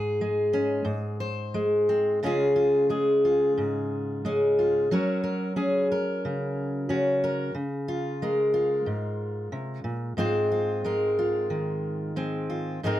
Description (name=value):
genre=folk, solo fingerstyle acoustic guitar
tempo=90 BPM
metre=4/4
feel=rubato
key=Db major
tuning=A4 = 444 Hz
part: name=fingerpicked steel-string acoustic guitar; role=solo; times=0.0-13.0 s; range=Ab2 to C5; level=-24 LUFS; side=equal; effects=none
room=little or no reverb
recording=close, detailed microphones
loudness=-24 LUFS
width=side -13 dB against mid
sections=0.0-2.2 A section; 2.2-13.0 B section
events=none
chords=0.0 Db5/Ab; 0.9 Ab; 2.2 Db; 4.9 Gb; 7.6 Db6; 10.2 Ab6